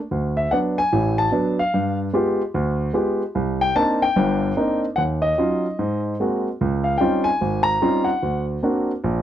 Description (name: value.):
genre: solo jazz.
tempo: 148 BPM.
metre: 4/4.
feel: swing 64% on 8ths.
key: unclear.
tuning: A4 = 440 Hz.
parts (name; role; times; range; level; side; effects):
warm grand piano; solo; 0.1-9.2 s; G1 to Bb5; -19 LUFS; equal; none.
room: little or no reverb.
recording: dry, close 1970s-style studio recording.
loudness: -19 LUFS.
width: side -11 dB against mid.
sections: 0.1-9.2 A section.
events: none.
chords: 0.1 D6; 1.7 G7b9; 3.3 Cm9; 5.0 Ebm9; 5.8 Ab9; 6.6 Dbmaj9#11; 8.2 Daug7.